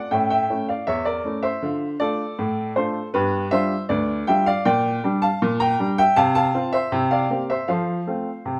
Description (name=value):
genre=ragtime piano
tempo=79 BPM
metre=2/4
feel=straight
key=unclear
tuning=A4 = 440 Hz
part: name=clear upright piano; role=solo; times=0.0-8.6 s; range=D2 to Bb5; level=-22 LUFS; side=equal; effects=none
room=wet studio reverb, RT60 1.0 s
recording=band playing live in one room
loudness=-22 LUFS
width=mono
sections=0.0-8.6 A section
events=none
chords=0.1 A; 1.6 Dm; 3.1 G7; 4.7 Gm/Bb; 6.2 F/C; 6.9 C7; 7.7 F